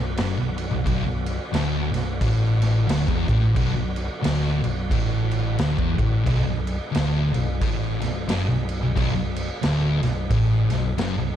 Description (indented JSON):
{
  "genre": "stoner and doom metal",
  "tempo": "89 BPM",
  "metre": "4/4",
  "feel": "swing 59% on 8ths",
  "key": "B dorian",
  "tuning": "A4 = 441 Hz",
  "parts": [
    { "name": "bright tonewheel organ", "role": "sustained chords", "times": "0.0-11.4 s", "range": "D3 to B3", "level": "-36 LUFS", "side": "right 2 dB", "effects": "slow rotary speaker, overdrive, chorus vibrato" },
    { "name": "thick fuzz guitar", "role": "riff", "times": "0.0-11.4 s", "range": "B1 to A2", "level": "-24 LUFS", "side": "left 6 dB", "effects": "distortion" },
    { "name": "thick fuzz guitar", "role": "riff", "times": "0.0-11.4 s", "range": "B1 to A2", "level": "-26 LUFS", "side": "right 8 dB", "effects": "distortion" },
    { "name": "hollow-body short-scale picked electric bass", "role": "bass", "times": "0.0-11.4 s", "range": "B0 to A1", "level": "-28 LUFS", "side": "equal", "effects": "overdrive" },
    { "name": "raw garage drum kit", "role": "drums", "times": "0.2-11.2 s", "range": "crash cymbal, kick drum, snare drum", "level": "-27 LUFS", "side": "equal", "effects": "none" }
  ],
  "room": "studio reverb",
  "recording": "dark, warm production",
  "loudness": "-20 LUFS",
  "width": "side -10 dB against mid",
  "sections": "0.0-11.4 A section",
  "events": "none",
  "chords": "0.0 Bm",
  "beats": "0.17 | 0.85 1.53 2.21 2.88 | 3.56 4.24 4.91 5.59 | 6.26 6.94 7.61 8.29 | 8.96 9.63 10.31 10.98"
}